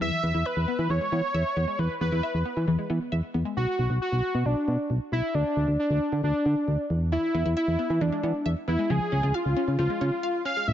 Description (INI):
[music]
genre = synth-pop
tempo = 135 BPM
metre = 4/4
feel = straight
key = unclear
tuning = A4 = 440 Hz
[part]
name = octave-doubled lead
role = melody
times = 0.0-10.7 s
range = D4 to E#5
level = -27 LUFS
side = equal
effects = chorus
[part]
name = analog pluck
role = arpeggios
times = 0.0-3.5, 7.1-10.6 s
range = E3 to E#5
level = -32 LUFS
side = left 2 dB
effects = chorus, phaser, digital delay
[part]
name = solid FM bass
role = bass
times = 0.0-10.7 s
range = A1 to E3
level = -26 LUFS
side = equal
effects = none
[sound]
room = little or no reverb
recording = nothing above 7.7 kHz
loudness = -24 LUFS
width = side -11 dB against mid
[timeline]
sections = 0.0-3.6 A section; 3.6-10.7 B section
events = none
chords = 0.0 E5; 3.6 Bm; 5.3 N.C.; 6.9 E5; 8.9 C#